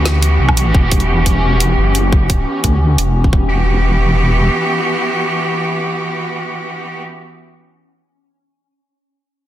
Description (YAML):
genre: half-time drum and bass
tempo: 174 BPM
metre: 4/4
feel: half-time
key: E dorian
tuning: A4 = 440 Hz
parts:
  - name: bright studio cello section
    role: sustained chords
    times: 0.0-7.0 s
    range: E3 to G4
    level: -18 LUFS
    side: right 1 dB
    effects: sidechain pumping, low-pass filter
  - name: deep soft wobble bass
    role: bass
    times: 0.0-4.5 s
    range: E1 to D2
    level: -14 LUFS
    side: equal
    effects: chorus
  - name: backwards swelling texture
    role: texture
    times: 0.0-3.5 s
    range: C#4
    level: -24 LUFS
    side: left 3 dB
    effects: built-in reverb
  - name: drum and bass drum kit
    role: drums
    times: 0.1-3.1 s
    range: hi-hat, snare drum, woodblock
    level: -18 LUFS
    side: right 1 dB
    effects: none
  - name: electronic kick drum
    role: drums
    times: 0.5-3.4 s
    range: none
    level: -14 LUFS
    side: equal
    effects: none
room: light reverb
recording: dense, heavily limited modern master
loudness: -12 LUFS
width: side -13 dB against mid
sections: 0.0-3.5 A section; 3.5-6.3 B section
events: filter sweep on cello section 0.0-3.5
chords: 0.0 Em